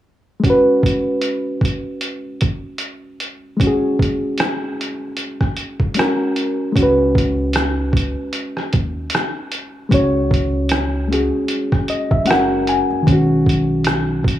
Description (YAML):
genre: lo-fi hip hop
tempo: 76 BPM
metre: 4/4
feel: swing 57% on 16ths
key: unclear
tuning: A4 = 440 Hz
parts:
  - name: bright reed electric piano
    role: accompaniment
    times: 0.4-14.4 s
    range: D#3 to G#5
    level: -18 LUFS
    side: equal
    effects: overdrive, cassette tape
  - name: lo-fi sampler-style drum kit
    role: drums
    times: 0.4-14.4 s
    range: hi-hat, kick drum, rim click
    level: -19 LUFS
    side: right 1 dB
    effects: none
  - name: upright bass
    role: bass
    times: 6.8-14.4 s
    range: F#1 to D#2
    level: -23 LUFS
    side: equal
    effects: none
room: moderate spring reverb, RT60 2.6 s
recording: small room ambience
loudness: -16 LUFS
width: side -12 dB against mid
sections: 0.4-6.8 A section; 6.8-14.4 B section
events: reed electric piano fill 11.5-13.1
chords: 0.4 C#5; 6.0 F#; 6.8 C#sus2; 12.3 F#; 13.1 B69